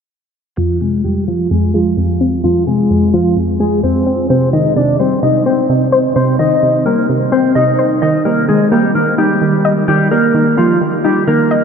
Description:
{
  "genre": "hip hop",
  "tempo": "129 BPM",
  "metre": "4/4",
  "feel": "half-time",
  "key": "F minor",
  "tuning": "A4 = 440 Hz",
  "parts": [
    { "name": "mellow electric guitar", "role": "melody", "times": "0.6-11.6 s", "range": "F3 to Eb5", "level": "-13 LUFS", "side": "equal", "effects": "analog chorus, low-pass filter, ping-pong delay" },
    { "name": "soft round pluck", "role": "accompaniment", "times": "0.6-11.6 s", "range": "F2 to Eb5", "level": "-15 LUFS", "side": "equal", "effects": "chorus, low-pass filter" }
  ],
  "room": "wet huge ambient reverb, RT60 8.2 s",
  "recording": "dreamy mix soaked in reverb",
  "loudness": "-11 LUFS",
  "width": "side -6 dB against mid",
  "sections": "0.6-11.6 A section",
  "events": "filter sweep 0.6-11.6",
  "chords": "0.6 Fm; 4.3 Cm; 8.0 Eb",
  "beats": "| 0.58 1.04 1.51 1.97 | 2.44 2.90 3.37 3.83 | 4.30 4.76 5.23 5.69 | 6.16 6.62 7.09 7.55 | 8.02 8.48 8.95 9.41 | 9.88 10.35 10.81 11.28"
}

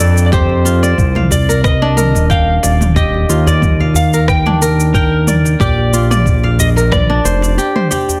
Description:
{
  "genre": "organic downtempo",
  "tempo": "91 BPM",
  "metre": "4/4",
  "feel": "swing 54% on 16ths",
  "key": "unclear",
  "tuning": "A4 = 439 Hz",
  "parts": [
    { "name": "electric slide guitar", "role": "melody", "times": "0.0-7.9 s", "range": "A4 to G5", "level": "-22 LUFS", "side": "equal", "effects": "delay" },
    { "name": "kora", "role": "arpeggios", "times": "0.0-8.2 s", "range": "D4 to G5", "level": "-20 LUFS", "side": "equal", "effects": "delay" },
    { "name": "smooth synth bass", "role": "bass", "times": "0.0-7.6 s", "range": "Eb1 to F2", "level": "-15 LUFS", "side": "equal", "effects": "tube saturation, sidechain pumping" },
    { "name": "deep house drum kit", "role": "drums", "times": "0.0-8.2 s", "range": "rim click, shaker, toms", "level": "-22 LUFS", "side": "equal", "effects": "overdrive, studio reverb" },
    { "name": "djembe", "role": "percussion", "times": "0.2-8.2 s", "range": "none", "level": "-24 LUFS", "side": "equal", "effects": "none" },
    { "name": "electronic kick drum", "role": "drums", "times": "0.3-7.1 s", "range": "none", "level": "-17 LUFS", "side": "equal", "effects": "studio reverb" }
  ],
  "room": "light reverb",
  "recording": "dense, heavily limited modern master",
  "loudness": "-12 LUFS",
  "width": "mono",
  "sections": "0.0-8.2 A section",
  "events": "none",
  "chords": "0.3 F7sus4; 3.0 Ebadd9; 5.6 Bbadd9",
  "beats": "| 0.32 0.98 1.64 2.30 | 2.96 3.62 4.28 4.94 | 5.60 6.26 6.92 7.58"
}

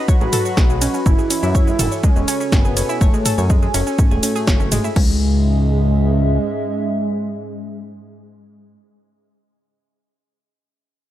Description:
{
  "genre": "melodic techno",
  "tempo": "123 BPM",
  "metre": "4/4",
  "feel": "straight",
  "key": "C# minor",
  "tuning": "A4 = 439 Hz",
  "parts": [
    { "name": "dark analog pad", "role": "sustained chords", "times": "0.0-8.8 s", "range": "C#4 to B5", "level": "-26 LUFS", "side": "equal", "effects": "chorus, phaser, sidechain pumping" },
    { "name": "woody wave-folded pluck", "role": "arpeggios", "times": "0.0-5.2 s", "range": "G#3 to C#6", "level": "-26 LUFS", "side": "equal", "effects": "chorus, sidechain pumping, dub echo" },
    { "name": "fat analog lead", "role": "melody", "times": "0.1-8.8 s", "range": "G#3 to F#4", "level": "-23 LUFS", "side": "right 1 dB", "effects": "lush chorus, cassette tape, sidechain pumping, dub echo" },
    { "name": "electronic kick drum", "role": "drums", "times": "0.1-5.1 s", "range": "none", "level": "-15 LUFS", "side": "equal", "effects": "overdrive" },
    { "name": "punchy analog drum machine", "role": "drums", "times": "0.1-5.1 s", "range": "crash cymbal, hi-hat, ride cymbal, shaker, snare drum, toms", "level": "-22 LUFS", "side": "right 1 dB", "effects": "overdrive" },
    { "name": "fat analog bass", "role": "bass", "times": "0.2-6.4 s", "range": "E1 to F#2", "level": "-19 LUFS", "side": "equal", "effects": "sidechain pumping" }
  ],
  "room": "digital ambience",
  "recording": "none",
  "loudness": "-14 LUFS",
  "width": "side -13 dB against mid",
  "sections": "0.0-5.0 A section; 5.0-8.9 B section",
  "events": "drop 0.0-5.0",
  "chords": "0.0 B7; 1.1 F#madd9; 5.0 C#madd9",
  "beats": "0.08 0.57 | 1.06 1.55 2.04 2.52 | 3.01 3.50 3.99 4.47 | 4.96 5.45 5.94 6.42 | 6.91 7.40 7.89 8.38"
}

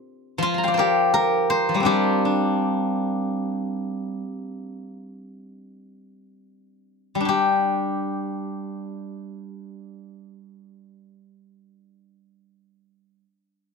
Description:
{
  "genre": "chinese traditional, Chinese solo plucked strings",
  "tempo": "52-84 BPM",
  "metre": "4/4",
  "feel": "rubato",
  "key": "G yu mode",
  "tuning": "A4 = 440 Hz",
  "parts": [
    { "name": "steel-string zither", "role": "solo", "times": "0.0-13.2 s", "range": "F3 to C6", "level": "-22 LUFS", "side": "left 1 dB", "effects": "none" }
  ],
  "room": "light reverb",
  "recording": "none",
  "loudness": "-20 LUFS",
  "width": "side -4 dB against mid",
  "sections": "0.0-7.3 A section; 7.3-11.7 B section",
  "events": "slowing down 0.4-7.3",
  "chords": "none",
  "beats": "| 0.41 1.13 1.87 2.62 | 3.39 4.22 5.12 6.15 | 7.27 8.40 9.51 10.60"
}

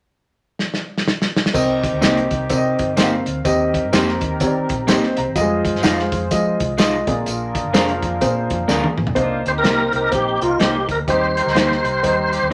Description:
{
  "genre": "uptempo 1960s-style soul",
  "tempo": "126 BPM",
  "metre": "4/4",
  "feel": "swing 61% on 8ths",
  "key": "C minor",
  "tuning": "A4 = 439 Hz",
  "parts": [
    { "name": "warm soul drum kit", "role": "drums", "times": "0.6-12.4 s", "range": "crash cymbal, hi-hat, kick drum, snare drum, toms", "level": "-23 LUFS", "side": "equal", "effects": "none" },
    { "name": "warm horn section", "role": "second line", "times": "1.5-12.5 s", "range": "Bb3 to C5", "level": "-29 LUFS", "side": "equal", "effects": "none" },
    { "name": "dark upright piano", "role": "accompaniment", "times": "1.5-12.5 s", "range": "G3 to Bb5", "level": "-23 LUFS", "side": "equal", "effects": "none" },
    { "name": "vintage muted fingered electric bass", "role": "bass", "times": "1.5-12.5 s", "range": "F1 to F3", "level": "-29 LUFS", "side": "equal", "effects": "none" },
    { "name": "tambourine", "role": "percussion", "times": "1.6-8.8 s", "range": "none", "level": "-35 LUFS", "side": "equal", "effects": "none" },
    { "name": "electric guitar through a small old amp", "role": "stabs", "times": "2.0-12.5 s", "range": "Ab3 to C5", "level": "-24 LUFS", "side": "equal", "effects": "none" },
    { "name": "tonewheel organ", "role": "melody", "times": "9.5-12.5 s", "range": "F4 to C5", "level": "-21 LUFS", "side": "equal", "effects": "chorus vibrato, fast rotary speaker" }
  ],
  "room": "moderate club reverb, RT60 0.6 s",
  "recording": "none",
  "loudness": "-18 LUFS",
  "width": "mono",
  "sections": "0.0-1.5 A section; 1.5-9.2 B section; 9.2-12.5 C section",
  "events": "drum fill 0.6-1.5, 8.7-9.2; upright piano fill 4.6-5.4",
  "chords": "0.0 N.C.; 1.5 Cm7; 3.5 Eb6; 5.4 Fm7; 7.0 Bb7; 9.2 Cm7; 11.1 Eb6",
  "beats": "0.11 0.59 1.07 | 1.54 2.02 2.50 2.97 | 3.45 3.93 4.40 4.88 | 5.36 5.83 6.31 6.79 | 7.26 7.74 8.22 8.69 | 9.17 9.65 10.12 10.60 | 11.08 11.55 12.03 12.51"
}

